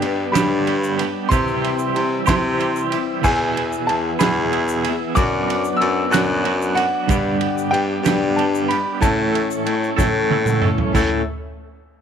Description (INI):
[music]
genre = folk rock and heartland rock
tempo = 62 BPM (dotted quarters)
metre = 6/8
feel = straight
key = A major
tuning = A4 = 440 Hz
[part]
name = warm baby grand piano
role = melody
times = 0.0-10.3 s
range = F#5 to F#6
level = -24 LUFS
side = equal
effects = none
[part]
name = picked old ladder-braced acoustic guitar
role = accompaniment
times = 0.0-11.2 s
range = G2 to A4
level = -26 LUFS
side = left 11 dB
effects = none
[part]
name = warm concert grand piano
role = accompaniment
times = 0.0-11.2 s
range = D4 to A5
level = -31 LUFS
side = left 11 dB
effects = none
[part]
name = mellow tonewheel organ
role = sustained chords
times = 0.0-11.3 s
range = A3 to E6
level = -31 LUFS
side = left 1 dB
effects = slow rotary speaker
[part]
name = twangy electric guitar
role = riff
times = 0.0-11.2 s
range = E2 to A4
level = -25 LUFS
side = right 12 dB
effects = tremolo
[part]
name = clear baritone saxophone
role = bass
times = 0.0-11.2 s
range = E2 to C3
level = -21 LUFS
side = left 1 dB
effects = none
[part]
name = natural country drum kit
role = drums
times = 0.0-11.1 s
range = crash cymbal, kick drum, ride cymbal, snare drum, toms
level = -24 LUFS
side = right 2 dB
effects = none
[part]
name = egg shaker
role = percussion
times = 0.4-11.2 s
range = none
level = -37 LUFS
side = left 15 dB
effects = none
[sound]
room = light reverb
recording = 1960s-style stereo with parts hard left and right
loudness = -17 LUFS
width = side -8 dB against mid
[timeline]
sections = 0.0-10.9 A section; 10.9-12.0 B section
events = drum fill 10.0-10.9; grand piano fill 10.0-10.9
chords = 0.0 G; 1.3 C; 3.2 E; 5.2 Bm/F#; 7.1 G; 9.0 A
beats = 0.35 | 1.31 2.28 | 3.24 4.21 | 5.17 6.13 | 7.10 8.06 | 9.02 9.98 | 10.95